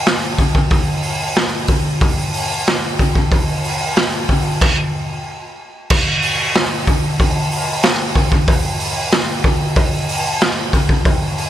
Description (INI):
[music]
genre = rock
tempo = 93 BPM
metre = 4/4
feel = straight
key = none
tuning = none
[part]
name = raw garage drum kit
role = drums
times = 0.1-11.5 s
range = crash cymbal, hi-hat, kick drum, snare drum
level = -14 LUFS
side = equal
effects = none
[sound]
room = light reverb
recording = none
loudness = -14 LUFS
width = side -12 dB against mid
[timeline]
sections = 0.0-5.9 A section; 5.9-11.5 B section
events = stop 4.6-5.9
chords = none